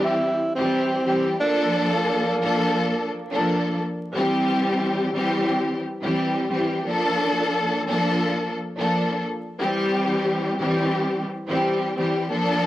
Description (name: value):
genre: hip hop, boom-bap hip-hop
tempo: 88 BPM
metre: 4/4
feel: swing 56% on 16ths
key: C mixolydian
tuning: A4 = 440 Hz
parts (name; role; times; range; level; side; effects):
- breathy tenor saxophone; melody; 0.0-3.4 s; Bb3 to E4; -25 LUFS; right 1 dB; high-pass filter, low-pass filter, tape echo
- warm studio string section; accompaniment; 0.0-12.7 s; E3 to A4; -21 LUFS; equal; high-pass filter, low-pass filter
room: light reverb, small room reverb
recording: dry, gritty hardware recording, vinyl crackle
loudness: -20 LUFS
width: side -14 dB against mid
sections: 0.0-12.7 A section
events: none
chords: 0.0 C; 1.4 Bbmaj7; 4.1 C; 6.9 Bbmaj7; 9.6 C